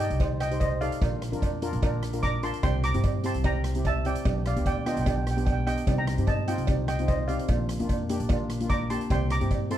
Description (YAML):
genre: calypso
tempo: 148 BPM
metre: 4/4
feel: straight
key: unclear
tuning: A4 = 438 Hz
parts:
  - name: steel pan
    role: melody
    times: 0.0-9.8 s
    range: C5 to D6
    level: -32 LUFS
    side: right 1 dB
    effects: none
  - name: steel pan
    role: accompaniment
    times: 0.0-9.8 s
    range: Bb3 to D5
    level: -32 LUFS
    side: left 1 dB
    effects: none
  - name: upright bass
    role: bass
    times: 0.0-9.8 s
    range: Bb1 to G2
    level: -29 LUFS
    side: equal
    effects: none
  - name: street-band drum kit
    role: drums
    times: 0.1-9.8 s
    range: hi-hat, kick drum, rim click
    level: -29 LUFS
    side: equal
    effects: none
  - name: cowbell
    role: percussion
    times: 0.2-9.6 s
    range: none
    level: -37 LUFS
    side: right 12 dB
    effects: none
room: little or no reverb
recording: dark, warm production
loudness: -24 LUFS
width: side -12 dB against mid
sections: 0.0-9.8 A section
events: none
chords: 0.0 Cm; 1.0 Bb; 2.6 C7; 4.3 G/B; 5.9 Cm; 7.5 Bb; 9.1 C7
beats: 0.20 0.61 | 1.01 1.42 1.82 2.23 | 2.63 3.04 3.44 3.85 | 4.25 4.66 5.06 5.47 | 5.87 6.28 6.68 7.08 | 7.49 7.89 8.29 8.70 | 9.10 9.51